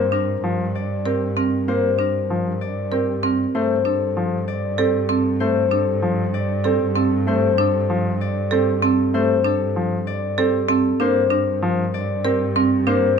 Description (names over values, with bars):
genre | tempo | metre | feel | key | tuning
classical, minimalist pattern music | 193 BPM | 6/4 | straight | unclear | A4 = 443 Hz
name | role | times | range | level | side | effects
concert harp | melody | 0.0-13.2 s | G4 to D5 | -23 LUFS | left 10 dB | none
dark cello | bass | 0.0-13.2 s | G2 | -25 LUFS | right 3 dB | none
marimba with medium hard mallets | arpeggios | 0.1-13.1 s | C4 to Bb4 | -22 LUFS | right 6 dB | none
clear grand piano | accompaniment | 0.4-13.1 s | F3 to C4 | -24 LUFS | left 1 dB | none
room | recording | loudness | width
little or no reverb | close, detailed microphones | -18 LUFS | side -6 dB against mid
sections
0.0-13.2 A section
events
none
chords
0.0 Gm; 3.5 Fadd9/G (rootless); 11.0 Gm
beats
0.12 0.43 0.74 1.06 1.37 | 1.68 1.99 2.30 2.61 2.92 3.23 | 3.54 3.85 4.17 4.48 4.79 5.10 | 5.41 5.72 6.03 6.34 6.65 6.96 | 7.27 7.58 7.90 8.21 8.52 8.83 | 9.14 9.45 9.76 10.07 10.38 10.69 | 11.00 11.31 11.63 11.94 12.25 12.56 | 12.87 13.18